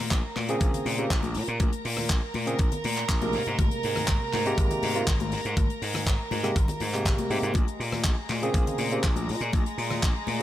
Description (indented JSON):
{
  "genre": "nu-disco, nu disco",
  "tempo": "121 BPM",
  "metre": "4/4",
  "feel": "straight",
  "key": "Bb dorian",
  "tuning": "A4 = 438 Hz",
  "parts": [
    { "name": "warm chamber string section", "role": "sustained chords", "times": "0.0-10.4 s", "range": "Ab3 to Bb5", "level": "-33 LUFS", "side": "right 3 dB", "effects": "sidechain pumping" },
    { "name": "gritty slap bass", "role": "bass", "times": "0.0-10.4 s", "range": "Ab1 to Bb2", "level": "-30 LUFS", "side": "equal", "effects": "overdrive" },
    { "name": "damped 70s drum kit", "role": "drums", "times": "0.1-10.4 s", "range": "handclaps, hi-hat, rim click", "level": "-33 LUFS", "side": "left 2 dB", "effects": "studio reverb" },
    { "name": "electronic kick drum", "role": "drums", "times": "0.1-10.1 s", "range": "none", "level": "-25 LUFS", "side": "equal", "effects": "studio reverb" },
    { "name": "congas", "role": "percussion", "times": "0.4-10.4 s", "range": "none", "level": "-35 LUFS", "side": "left 6 dB", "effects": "none" },
    { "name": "barky tine electric piano", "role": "accompaniment", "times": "0.5-10.4 s", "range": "C3 to Bb4", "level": "-31 LUFS", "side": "right 1 dB", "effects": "overdrive, sidechain pumping, analog delay" }
  ],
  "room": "light reverb, small room ambience",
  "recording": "none",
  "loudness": "-24 LUFS",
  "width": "side -13 dB against mid",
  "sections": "0.0-10.4 A section",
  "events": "none",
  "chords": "0.0 Bbm9; 3.3 Abmaj9; 7.6 Bbm9"
}